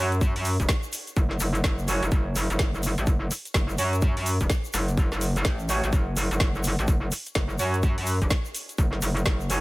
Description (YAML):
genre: bass house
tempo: 126 BPM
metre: 4/4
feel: swing 62% on 16ths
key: F# minor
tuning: A4 = 443 Hz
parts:
  - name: mellow horn section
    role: stabs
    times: 0.0-9.6 s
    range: F#3 to C#5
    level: -32 LUFS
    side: right 2 dB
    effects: sidechain pumping, dub echo
  - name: metallic wobble bass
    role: bass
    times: 0.0-9.6 s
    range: E1 to F#2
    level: -26 LUFS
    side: equal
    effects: chorus, overdrive, sidechain pumping
  - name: garage drum kit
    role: drums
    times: 0.1-9.6 s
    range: hi-hat, snare drum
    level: -31 LUFS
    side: equal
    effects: overdrive
  - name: egg shaker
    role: percussion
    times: 0.1-9.6 s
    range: none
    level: -37 LUFS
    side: left 3 dB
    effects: none
  - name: electronic kick drum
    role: drums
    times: 0.2-9.4 s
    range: none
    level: -24 LUFS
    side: equal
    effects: none
room: digital ambience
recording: none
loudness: -23 LUFS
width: side -20 dB against mid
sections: 0.0-9.6 A section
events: none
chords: 0.0 F#5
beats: | 0.21 0.69 1.17 1.64 | 2.12 2.59 3.07 3.55 | 4.02 4.50 4.97 5.45 | 5.93 6.40 6.88 7.36 | 7.83 8.31 8.78 9.26